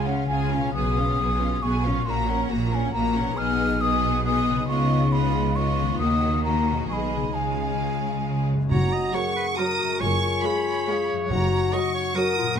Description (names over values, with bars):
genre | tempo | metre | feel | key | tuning
classical | 137 BPM | 3/4 | straight | F# major | A4 = 440 Hz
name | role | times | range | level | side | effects
rich symphonic violin section | melody | 0.0-12.6 s | D#5 to D#6 | -32 LUFS | right 2 dB | none
clear studio violin section | second line | 0.0-12.5 s | E#4 to C#5 | -35 LUFS | left 1 dB | none
wooden flute | second line | 0.0-12.6 s | E#5 to E#6 | -28 LUFS | left 1 dB | none
clear symphonic viola section | accompaniment | 0.0-12.5 s | F#3 to F#4 | -29 LUFS | equal | none
concert harp | arpeggios | 0.0-12.6 s | F#2 to A#4 | -30 LUFS | left 11 dB | none
rich symphonic cello section | bass | 0.0-11.6 s | F#2 to D#3 | -30 LUFS | right 2 dB | none
rich symphonic double bass section | bass | 0.0-11.6 s | F#1 to D#2 | -27 LUFS | right 2 dB | none
bright oboe | second line | 8.7-12.6 s | A#4 to D#5 | -31 LUFS | right 3 dB | none
dark clarinet | second line | 8.7-12.5 s | E#4 to G#4 | -31 LUFS | left 2 dB | none
mellow French horn section | sustained chords | 8.7-12.6 s | F#4 to A#4 | -28 LUFS | left 6 dB | none
timpani | percussion | 8.7-11.9 s | F#2 | -29 LUFS | equal | none
room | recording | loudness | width
moderate stone room reverb, RT60 1.2 s | none | -21 LUFS | side -8 dB against mid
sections
0.0-8.7 A section; 8.7-12.6 B section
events
none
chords
0.0 C#; 0.7 C#7/B; 2.1 F#/A#; 3.4 G#m/B; 4.7 C#9; 6.0 D#m; 6.9 G#m/B; 7.3 C#; 8.7 F#; 10.0 C#7/F#; 11.3 F#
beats
0.28 | 0.74 1.19 1.62 | 2.06 2.50 2.94 | 3.38 3.82 4.25 | 4.68 5.12 5.56 | 6.00 6.44 6.89 | 7.34 7.80 8.26 | 8.71 9.15 9.58 | 10.01 10.44 10.87 | 11.30 11.73 12.16 | 12.59